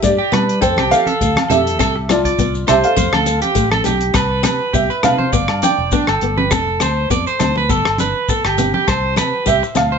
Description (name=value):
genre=highlife guitar band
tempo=102 BPM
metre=4/4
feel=swing 54% on 16ths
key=C major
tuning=A4 = 440 Hz
part: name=felt-muted upright piano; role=melody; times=0.0-10.0 s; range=F4 to G5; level=-18 LUFS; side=right 2 dB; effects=none
part: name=picked steel-string acoustic guitar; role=accompaniment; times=0.0-9.9 s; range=A3 to D4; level=-23 LUFS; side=left 7 dB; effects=none
part: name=fingered electric bass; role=bass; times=0.0-10.0 s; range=E1 to G3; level=-22 LUFS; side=equal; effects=none
part: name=warm soul drum kit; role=drums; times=0.0-9.9 s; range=hi-hat, kick drum, rim click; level=-22 LUFS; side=equal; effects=none
part: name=shekere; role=percussion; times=0.0-9.9 s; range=none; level=-25 LUFS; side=left 4 dB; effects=none
part: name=electric guitar at the edge of break-up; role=arpeggios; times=0.2-10.0 s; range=D4 to D5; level=-18 LUFS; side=right 3 dB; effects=tape echo
part: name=agogo bells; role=percussion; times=0.3-9.9 s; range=none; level=-26 LUFS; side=left 7 dB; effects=none
part: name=congas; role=percussion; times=0.3-9.9 s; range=none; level=-23 LUFS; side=right 2 dB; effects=none
room=moderate studio reverb, RT60 0.8 s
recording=nothing above 7.8 kHz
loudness=-13 LUFS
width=side -6 dB against mid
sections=0.0-4.2 A section; 4.2-10.0 B section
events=felt piano solo 4.2-10.0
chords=0.0 Gadd9; 0.6 Fadd9; 1.8 Csus2; 3.0 Fadd9; 4.2 C5; 5.3 Gadd9; 6.5 F; 7.7 Gadd9; 8.9 C5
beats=0.03 0.62 1.21 | 1.80 2.39 2.98 3.57 | 4.16 4.75 5.34 5.93 | 6.52 7.11 7.70 8.29 | 8.88 9.47